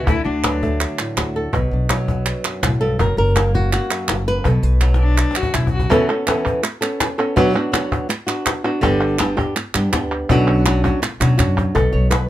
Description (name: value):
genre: flamenco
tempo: 164 BPM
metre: 4/4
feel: straight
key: B minor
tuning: A4 = 443 Hz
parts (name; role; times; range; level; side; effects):
- flamenco guitar; melody; 0.0-12.3 s; F#2 to C#5; -20 LUFS; equal; none
- warm cello; second line; 0.0-0.9, 5.0-5.9 s; D4 to F#4; -24 LUFS; left 4 dB; none
- upright bass; bass; 0.0-5.8, 8.8-12.3 s; F#1 to B2; -19 LUFS; equal; none
- cajon; percussion; 0.1-12.3 s; none; -22 LUFS; left 2 dB; none
- palmas hand claps; percussion; 0.1-12.3 s; none; -24 LUFS; right 4 dB; none
room: light reverb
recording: close, detailed microphones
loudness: -16 LUFS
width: side -13 dB against mid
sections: 0.0-5.9 A section; 5.9-11.8 B section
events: drum fill 4.8-5.9, 11.0-11.8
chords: 0.1 D; 1.5 Bm; 3.0 F#; 4.4 Bm; 5.9 Aadd9; 7.4 Bm; 8.8 G; 10.3 Bmadd9; 11.8 Aadd9/B